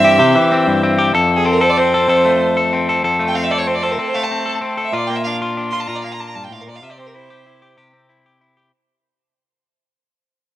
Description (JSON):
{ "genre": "highlife", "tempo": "127 BPM (dotted quarters)", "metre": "12/8", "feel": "straight", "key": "F major", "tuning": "A4 = 440 Hz", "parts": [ { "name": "bright violin", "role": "melody", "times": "0.0-7.8 s", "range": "Ab4 to C6", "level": "-18 LUFS", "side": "right 2 dB", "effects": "cassette tape, tape echo" }, { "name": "clean electric guitar", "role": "accompaniment", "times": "0.0-8.7 s", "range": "F2 to A4", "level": "-16 LUFS", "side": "left 2 dB", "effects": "warbly pitch drift, cassette tape" } ], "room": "light reverb", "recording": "home recording on cassette", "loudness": "-14 LUFS", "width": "side -14 dB against mid", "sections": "0.0-1.1 A section; 1.1-8.7 B section", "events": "fade-out 1.1-8.7; violin solo 1.1-8.7", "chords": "0.0 C; 1.1 F; 4.9 Bb; 6.8 C" }